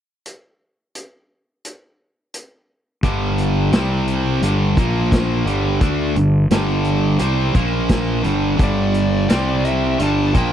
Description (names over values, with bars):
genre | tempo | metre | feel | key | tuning
classic rock | 86 BPM | 4/4 | straight | unclear | A4 = 441 Hz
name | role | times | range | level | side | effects
vintage drum kit | drums | 0.3-10.5 s | hi-hat, kick drum, snare drum | -19 LUFS | equal | none
sludgy distorted guitar | riff | 3.0-10.5 s | G2 to D4 | -18 LUFS | equal | overdrive
fuzz fingered electric bass | bass | 3.0-10.5 s | G1 to D2 | -20 LUFS | equal | overdrive
smooth overdriven lead guitar | second line | 8.6-10.5 s | D5 to A5 | -25 LUFS | equal | none
room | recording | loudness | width
little or no reverb | dry, close 1970s-style studio recording | -15 LUFS | side -10 dB against mid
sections
0.3-3.0 A section; 3.0-10.5 B section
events
none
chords
0.3 N.C.; 3.0 G5; 3.7 C5; 4.4 G5; 4.8 Bb5; 5.5 G5; 7.6 Bb5; 8.3 G5; 9.3 C5; 10.0 G5